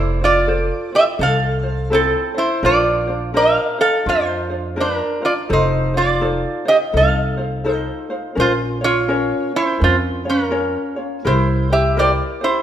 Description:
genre	Hawaiian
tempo	84 BPM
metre	4/4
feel	swing 62% on 8ths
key	F major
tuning	A4 = 444 Hz
part	lap resonator guitar	melody	0.0-12.6 s	C4 to F5	-17 LUFS	right 2 dB	none
part	ukulele	accompaniment	0.0-12.6 s	Db4 to Db5	-23 LUFS	left 2 dB	none
part	upright bass	bass	0.0-12.2 s	F1 to F2	-21 LUFS	equal	none
room	moderate recital hall reverb, RT60 1.7 s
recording	minimal, uncompressed stereo recording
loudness	-15 LUFS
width	side -10 dB against mid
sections	0.0-12.6 A section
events	none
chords	0.0 Fmaj7; 2.6 Bbadd9; 5.5 F7; 8.4 Bbm; 11.2 C7

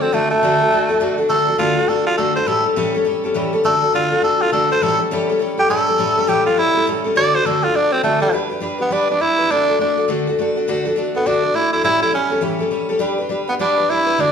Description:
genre	rock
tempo	205 BPM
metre	4/4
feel	swing 62% on 8ths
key	D major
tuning	A4 = 441 Hz
part	growling tenor saxophone	melody	0.0-14.3 s	G3 to D5	-16 LUFS	right 1 dB	none
part	picked steel-string acoustic guitar	accompaniment	0.0-14.3 s	A2 to B4	-18 LUFS	left 2 dB	none
room	wet large studio reverb, RT60 1.3 s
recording	band playing live in one room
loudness	-15 LUFS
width	side -7 dB against mid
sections	0.0-8.3 A section; 8.3-14.3 B section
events	tenor saxophone solo 0.0-8.3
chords	0.0 D; 2.5 A7; 3.6 D; 4.8 A7; 7.2 D; 8.3 G; 9.5 D; 11.8 A7; 13.0 G

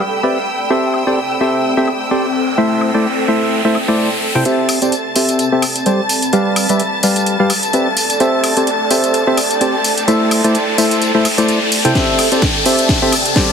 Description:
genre	piano house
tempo	128 BPM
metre	4/4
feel	swing 56% on 16ths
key	C major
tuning	A4 = 440 Hz
part	warm symphonic violin section	sustained chords	0.0-13.5 s	G5 to A6	-22 LUFS	left 1 dB	sidechain pumping
part	house drum kit	drums	0.0-13.5 s	hi-hat, snare drum, tambourine, woodblock	-18 LUFS	equal	low-pass filter on hats, low-pass filter on perc, low-pass filter on snare, low-pass filter on room
part	granular cloud pad	texture	0.0-13.5 s	C4 to C6	-22 LUFS	right 1 dB	built-in reverb, sidechain pumping
part	percussive organ stab	riff	0.2-13.5 s	C3 to G5	-15 LUFS	equal	chorus, sidechain pumping, dub echo
part	riser	sound effects	1.4-13.5 s	none	-22 LUFS	left 1 dB	none
part	electronic kick drum	drums	12.0-13.5 s	none	-18 LUFS	equal	none
room	moderate plate reverb, RT60 1.1 s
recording	heavily compressed radio sound, multiband compression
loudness	-12 LUFS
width	side -7 dB against mid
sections	0.0-4.5 A section; 4.5-13.5 B section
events	riser 1.4-4.5, 4.5-13.5; build-up 4.5-13.5; filter sweep on synth stab 4.5-13.5; drum fill 12.0-13.5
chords	0.5 C6; 6.1 G7; 8.0 C6

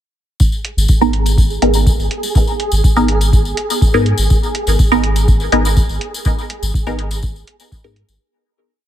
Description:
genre	dub techno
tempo	123 BPM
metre	4/4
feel	straight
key	G# minor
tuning	A4 = 439 Hz
part	electronic kick drum	drums	0.4-7.8 s	none	-13 LUFS	equal	none
part	tambourine	percussion	0.4-8.2 s	none	-25 LUFS	left 4 dB	none
part	flickering grainy texture	texture	0.8-8.2 s	G#4	-25 LUFS	right 2 dB	built-in reverb, sidechain pumping
part	electronic hi-hat	drums	0.6-8.1 s	none	-24 LUFS	right 2 dB	none
part	warm sub bass	bass	0.8-8.2 s	G#1 to G#2	-16 LUFS	equal	tube saturation, sidechain pumping
part	filtered dub chord stab	stabs	1.0-8.0 s	B3 to A#4	-18 LUFS	equal	phaser, sidechain pumping, dub echo
room	little or no reverb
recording	none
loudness	-12 LUFS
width	side -11 dB against mid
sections	0.4-8.2 groove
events	fade-out 5.6-8.2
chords	0.4 G#madd9

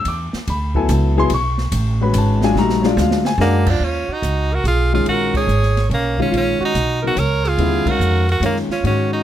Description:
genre	modal jazz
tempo	143 BPM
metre	3/4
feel	swing 67% on 8ths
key	Eb minor from 3.8 s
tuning	A4 = 440 Hz
part	warm concert grand piano	accompaniment	0.0-9.2 s	Db3 to D6	-20 LUFS	left 4 dB	none
part	upright bass	bass	0.0-9.2 s	G#1 to Ab2	-18 LUFS	right 1 dB	none
part	open jazz drum kit	drums	0.1-9.0 s	crash cymbal, hi-hat, kick drum, ride cymbal, snare drum	-27 LUFS	right 1 dB	none
part	edgy tenor saxophone	melody	3.4-9.2 s	A#3 to Bb4	-21 LUFS	right 1 dB	none
part	breathy alto saxophone	second line	3.4-9.2 s	Db4 to Db5	-24 LUFS	right 6 dB	none
room	light reverb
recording	close, detailed microphones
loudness	-15 LUFS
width	side -11 dB against mid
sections	0.0-3.8 A section; 3.8-9.2 B section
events	drum fill 2.6-3.4; band accent 5.3, 7.8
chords	0.0 E9sus4; 2.6 A#7b13; 3.8 Ebm11

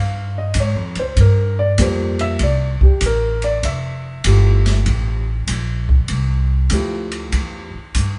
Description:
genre	jazz piano trio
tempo	97 BPM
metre	4/4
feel	swing 67% on 8ths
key	F major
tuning	A4 = 440 Hz
part	warm grand piano	melody	0.0-7.7 s	F3 to F5	-25 LUFS	equal	none
part	upright bass	bass	0.0-8.2 s	F1 to Ab2	-20 LUFS	equal	none
part	open jazz drum kit	drums	0.5-8.1 s	hi-hat, kick drum, ride cymbal, snare drum	-23 LUFS	equal	none
room	moderate stone room reverb, RT60 1.0 s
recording	band playing live in one room, nothing above 10.8 kHz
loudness	-18 LUFS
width	mono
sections	0.0-8.2 A section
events	none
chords	0.0 Db; 1.2 Gm9; 2.4 Amadd11; 3.6 Fmaj9

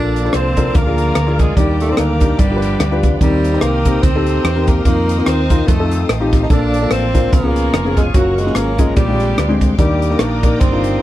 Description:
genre	uptempo gospel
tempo	146 BPM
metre	4/4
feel	swing 57% on 8ths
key	Bb major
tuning	A4 = 440 Hz
part	breathy tenor saxophone	melody	0.0-11.0 s	Gb3 to Eb4	-21 LUFS	right 4 dB	none
part	warm horn section	melody	0.0-11.0 s	Bb3 to D5	-25 LUFS	left 3 dB	tape echo
part	dark grand piano	accompaniment	0.0-11.0 s	G2 to C5	-19 LUFS	left 3 dB	none
part	bright studio string section	sustained chords	0.0-11.0 s	Db5 to Eb6	-33 LUFS	left 2 dB	none
part	bright tonewheel organ	sustained chords	0.0-11.0 s	Cb3 to Bb4	-27 LUFS	right 2 dB	slow rotary speaker, chorus vibrato
part	hollow-body short-scale fingered electric bass	bass	0.0-11.0 s	F1 to F2	-19 LUFS	equal	none
part	crisp fusion drum kit	drums	0.2-10.9 s	hi-hat, kick drum, rim click	-16 LUFS	equal	none
room	little or no reverb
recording	none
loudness	-12 LUFS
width	side -14 dB against mid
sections	0.0-11.0 A section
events	none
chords	0.0 Bbmaj7; 0.7 Bb7/D; 1.6 Ebmaj7; 2.4 G7; 3.2 Cm7; 4.9 F7sus4; 5.7 F7; 6.5 Bbmaj7; 7.3 Db7; 8.1 Gbmaj7; 9.0 Bb13; 9.8 Ebmaj7

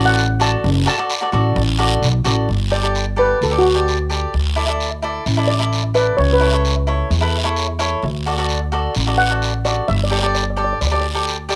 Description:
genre	calypso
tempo	130 BPM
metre	4/4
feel	straight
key	D major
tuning	A4 = 442 Hz
part	steel pan	melody	0.0-11.1 s	F#4 to A5	-21 LUFS	equal	cassette tape
part	cavaquinho	accompaniment	0.0-11.6 s	E4 to D5	-24 LUFS	equal	cassette tape
part	upright bass	bass	0.0-11.6 s	F#1 to E2	-21 LUFS	equal	none
part	guiro	percussion	0.2-11.6 s	none	-27 LUFS	equal	none
room	light reverb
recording	home recording on cassette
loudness	-18 LUFS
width	mono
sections	0.0-2.5 A section; 2.5-11.6 B section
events	steel pan solo 2.5-11.6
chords	0.0 D/F#; 2.5 Gsus2; 4.3 Dsus2; 6.2 Aadd9/C#; 8.0 D; 9.9 Gsus2

